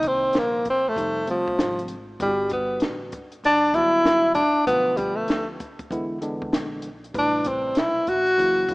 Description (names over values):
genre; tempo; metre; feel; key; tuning
hip hop, jazz-hop; 97 BPM; 4/4; swing 66% on 16ths; unclear; A4 = 443 Hz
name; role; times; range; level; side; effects
breathy tenor saxophone; melody; 0.0-8.7 s; F3 to F#4; -20 LUFS; equal; none
tine electric piano; accompaniment; 0.0-8.7 s; C3 to B4; -32 LUFS; equal; none
upright bass; bass; 0.0-8.7 s; F1 to E2; -41 LUFS; equal; none
compact cocktail drum kit; drums; 0.0-8.7 s; hi-hat, kick drum, snare drum; -27 LUFS; equal; none
room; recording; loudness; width
moderate lush hall reverb, RT60 1.9 s, small room ambience; rough home demo mix, small speaker sound; -20 LUFS; side -24 dB against mid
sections
0.0-8.7 A section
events
tenor saxophone solo 0.0-8.7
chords
0.0 Cm7; 1.0 F9; 2.2 Gmaj7; 4.7 Bm7b5; 5.9 E7; 7.1 Am9